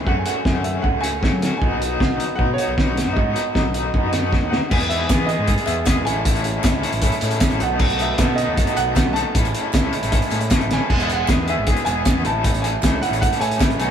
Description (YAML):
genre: indie rock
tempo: 155 BPM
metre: 4/4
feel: straight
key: E major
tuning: A4 = 440 Hz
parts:
  - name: warm upright piano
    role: melody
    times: 0.0-13.9 s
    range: C#5 to A5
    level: -26 LUFS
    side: right 3 dB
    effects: none
  - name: biting overdriven guitar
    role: riff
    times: 0.0-13.9 s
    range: E3 to A4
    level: -26 LUFS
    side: left 5 dB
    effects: tremolo
  - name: electric guitar through a small old amp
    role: riff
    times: 0.0-13.9 s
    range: E2 to G#4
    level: -26 LUFS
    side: right 4 dB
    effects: none
  - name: growling picked electric bass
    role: bass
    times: 0.0-13.9 s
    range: E1 to F#3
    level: -26 LUFS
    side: equal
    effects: overdrive
  - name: cloth-damped thuddy drum kit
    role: drums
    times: 0.1-13.9 s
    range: crash cymbal, hi-hat, kick drum, snare drum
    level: -20 LUFS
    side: equal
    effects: none
  - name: string machine, cellos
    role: sustained chords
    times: 4.7-13.9 s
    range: A4 to E6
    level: -38 LUFS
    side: right 1 dB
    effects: none
  - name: group handclap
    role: percussion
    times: 5.1-13.7 s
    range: none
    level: -36 LUFS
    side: right 3 dB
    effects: none
room: moderate stone room reverb, RT60 0.9 s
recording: band playing live in one room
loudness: -17 LUFS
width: side -8 dB against mid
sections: 0.0-4.7 A section; 4.7-13.9 B section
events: drum fill 4.3-4.7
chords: 0.1 F#madd9; 1.6 B; 4.7 Emaj7; 6.1 Amaj7; 7.6 B7; 9.3 Amaj7; 10.9 Emaj7; 12.3 Amaj7